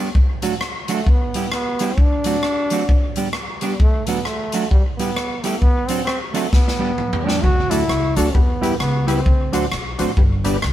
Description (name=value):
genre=ska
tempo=132 BPM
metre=4/4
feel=swing 60% on 8ths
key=D major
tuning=A4 = 436 Hz
part: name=mellow electric guitar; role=accompaniment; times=0.0-10.6 s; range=F#3 to G4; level=-24 LUFS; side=right 5 dB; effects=none
part: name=swinging big-band drum kit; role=drums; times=0.1-10.7 s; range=hi-hat, kick drum, rim click, snare drum, toms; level=-18 LUFS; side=equal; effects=none
part: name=clear trombone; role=melody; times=0.9-9.7 s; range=G3 to F#4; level=-23 LUFS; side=equal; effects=none
part: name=upright bass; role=bass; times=7.4-10.7 s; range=G1 to E2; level=-22 LUFS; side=equal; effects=none
part: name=tonewheel organ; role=stabs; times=7.7-10.6 s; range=D4 to C5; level=-25 LUFS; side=left 3 dB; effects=chorus vibrato
room=light reverb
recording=band playing live in one room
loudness=-16 LUFS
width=side -12 dB against mid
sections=0.0-10.7 A section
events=drum fill 6.5-7.4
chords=0.2 D; 1.1 Em; 2.0 D7; 2.9 G; 3.8 D; 4.7 Em; 5.6 D7; 6.5 G; 7.4 D; 8.3 Em; 9.3 D7; 10.2 G